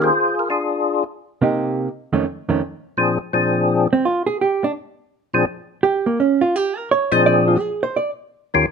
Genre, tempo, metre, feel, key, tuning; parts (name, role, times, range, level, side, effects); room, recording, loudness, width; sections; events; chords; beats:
jazz; 168 BPM; 4/4; swing 66% on 8ths; Bb mixolydian; A4 = 440 Hz
percussive tonewheel organ; melody; 0.0-8.7 s; Eb2 to C5; -16 LUFS; left 3 dB; slow rotary speaker, chorus vibrato
hollow-body jazz guitar; accompaniment; 0.0-8.1 s; F2 to Eb5; -18 LUFS; right 4 dB
light reverb; minimal, uncompressed stereo recording; -17 LUFS; side -6 dB against mid
0.0-3.0 A section; 3.0-8.7 B section
hollow-body jazz guitar solo 3.0-8.7
0.1 Dm7b5; 0.8 G5; 1.5 Cm7; 2.3 Faug7; 3.0 Bb7
| 0.12 0.48 0.83 1.19 | 1.54 1.90 2.26 2.61 | 2.97 3.33 3.68 4.04 | 4.39 4.75 5.11 5.46 | 5.82 6.18 6.53 6.89 | 7.25 7.60 7.96 8.31